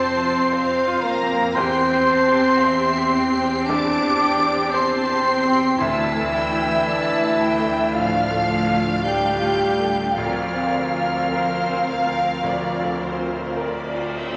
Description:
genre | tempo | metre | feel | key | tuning
cinematic | 52-58 BPM | 4/4 | rubato | unclear | A4 = 440 Hz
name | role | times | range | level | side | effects
warm symphonic violin section | melody | 0.0-13.6 s | E6 to D7 | -33 LUFS | equal | none
mellow flute section | second line | 0.0-13.6 s | E5 to D6 | -25 LUFS | equal | none
warm clarinet | second line | 0.0-13.5 s | E4 to D5 | -28 LUFS | equal | none
warm symphonic violin section | second line | 0.0-14.4 s | C5 to A5 | -32 LUFS | equal | none
bright grand piano | accompaniment | 0.0-14.4 s | D2 to D5 | -30 LUFS | equal | none
clear symphonic viola section | accompaniment | 0.0-14.4 s | A3 to C5 | -30 LUFS | equal | none
warm French horn section | sustained chords | 0.0-13.6 s | E3 to D4 | -29 LUFS | equal | none
clear symphonic double bass section | bass | 0.0-14.4 s | D2 to F2 | -36 LUFS | equal | none
rich studio cello section | bass | 0.0-13.5 s | E3 to D4 | -33 LUFS | equal | none
room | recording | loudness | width
wet scoring stage reverb, RT60 1.7 s | none | -20 LUFS | mono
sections
0.0-14.4 A section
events
none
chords
0.0 F; 1.6 C/E; 5.8 Dmadd9; 10.2 Bbadd9/D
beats
0.51 | 1.57 2.62 3.68 4.74 | 5.80 6.88 7.96 9.05 | 10.18 11.32 12.46 13.59

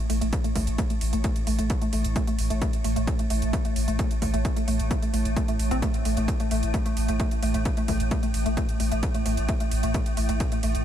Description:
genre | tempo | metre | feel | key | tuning
driving peak-time techno | 131 BPM | 4/4 | straight | unclear | A4 = 440 Hz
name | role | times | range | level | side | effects
swarming drone | drone | 0.0-10.8 s | A2 to A3 | -32 LUFS | right 1 dB | built-in reverb, sidechain pumping
woody wave-folded pluck | riff | 0.1-10.7 s | A3 to C4 | -30 LUFS | equal | ensemble chorus, cassette tape, sidechain pumping, dub echo
warm sub bass | bass | 0.1-10.8 s | A1 | -26 LUFS | equal | overdrive, sidechain pumping, low-pass filter
techno drum kit | drums | 0.1-10.8 s | hi-hat, ride cymbal | -37 LUFS | right 4 dB | sidechain pumping on hats, sidechain pumping on cymbals
electronic kick drum | drums | 0.3-10.5 s | none | -26 LUFS | equal | none
room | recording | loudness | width
little or no reverb | none | -23 LUFS | side -10 dB against mid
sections
0.0-10.8 A section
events
none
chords
0.0 A5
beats
| 0.33 0.78 1.24 1.70 | 2.16 2.62 3.07 3.53 | 3.99 4.45 4.91 5.36 | 5.82 6.28 6.74 7.20 | 7.65 8.11 8.57 9.03 | 9.49 9.94 10.40

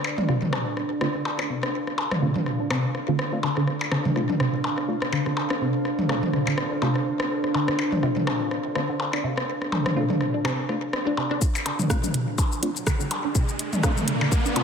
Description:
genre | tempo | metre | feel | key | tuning
minimal techno | 124 BPM | 4/4 | swing 56% on 16ths | D minor | A4 = 441 Hz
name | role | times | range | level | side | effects
minimal click drum kit | percussion | 0.0-14.6 s | percussion blips, rim click, toms | -26 LUFS | left 1 dB | digital delay
deep dark ambient pad | texture | 0.0-14.6 s | D4 to F5 | -29 LUFS | right 1 dB | chorus, built-in reverb, sidechain pumping
resonant blip pluck | riff | 0.2-14.6 s | C3 to D4 | -28 LUFS | right 1 dB | phaser, analog chorus, sidechain pumping, digital delay
wavetable chord stab | stabs | 0.3-14.6 s | A3 to F4 | -34 LUFS | left 2 dB | none
electronic kick drum | drums | 11.4-14.4 s | none | -24 LUFS | equal | none
house drum kit | drums | 11.4-14.6 s | hi-hat, rim click, shaker | -30 LUFS | left 1 dB | none
riser | sound effects | 12.3-14.6 s | none | -31 LUFS | right 1 dB | none
room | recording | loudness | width
moderate lush hall reverb, RT60 2.4 s | none | -22 LUFS | side -6 dB against mid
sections
0.0-11.4 A section; 11.4-14.6 B section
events
filter sweep on synth pluck 0.0-11.4, 11.4-14.6; build-up 11.4-14.6; filter sweep on synth stab 11.4-14.6; riser 12.3-14.6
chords
0.0 Dm7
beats
0.29 0.77 1.25 | 1.74 2.22 2.71 3.19 | 3.67 4.16 4.64 5.12 | 5.61 6.09 6.58 7.06 | 7.54 8.03 8.51 9.00 | 9.48 9.96 10.45 10.93 | 11.42 11.90 12.38 12.87 | 13.35 13.84 14.32

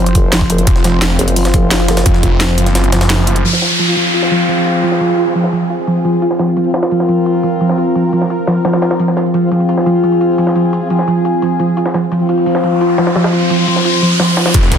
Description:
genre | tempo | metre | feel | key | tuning
dark technical drum and bass | 173 BPM | 4/4 | straight | F phrygian | A4 = 438 Hz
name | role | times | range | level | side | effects
sweeping resonant pad | sustained chords | 0.0-14.8 s | F3 to C5 | -19 LUFS | left 1 dB | chorus, phaser, sidechain pumping
soft round pluck | arpeggios | 0.0-14.5 s | F3 to F4 | -15 LUFS | right 2 dB | wide subtle chorus, vintage 12-bit sampler grit, sidechain pumping, tape echo
vowel-sweep wobble bass | bass | 0.0-2.0 s | Gb1 | -15 LUFS | equal | chorus
drum and bass drum kit | drums | 0.1-3.4, 14.5-14.8 s | hi-hat, rim click, snare drum | -18 LUFS | equal | overdrive, low-pass filter on hats, low-pass filter on snare, low-pass filter on room
jungle sampler-style drum kit | drums | 0.1-14.8 s | hi-hat, snare drum | -22 LUFS | equal | high-pass filter on hats, low-pass filter on hats, high-pass filter on snare, low-pass filter on snare
electronic kick drum | drums | 0.2-2.3, 14.5-14.8 s | none | -13 LUFS | equal | overdrive
snarling distorted saw bass | bass | 0.7-3.4, 14.5-14.8 s | F1 to Gb1 | -14 LUFS | equal | distortion, tube saturation
mellow brass ensemble | stabs | 1.1-13.8 s | F3 to F4 | -18 LUFS | left 3 dB | low-pass filter, tape echo
downlifter and riser | sound effects | 3.4-6.2, 12.4-14.5 s | none | -17 LUFS | equal | none
room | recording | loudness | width
light reverb, digital ambience | dense, heavily limited modern master | -11 LUFS | side -8 dB against mid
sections
0.0-3.4 A section; 3.4-14.5 B section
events
kick drops out 2.8-3.4; riser 12.4-14.5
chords
0.0 F5; 3.4 Fm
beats
0.32 | 0.67 1.02 1.36 1.71 | 2.06 2.40 2.75 3.10 | 3.45 3.79 4.14 4.49 | 4.83 5.18 5.53 5.87 | 6.22 6.57 6.91 7.26 | 7.61 7.95 8.30 8.65 | 8.99 9.34 9.69 10.04 | 10.38 10.73 11.08 11.42 | 11.77 12.12 12.46 12.81 | 13.16 13.50 13.85 14.20 | 14.54

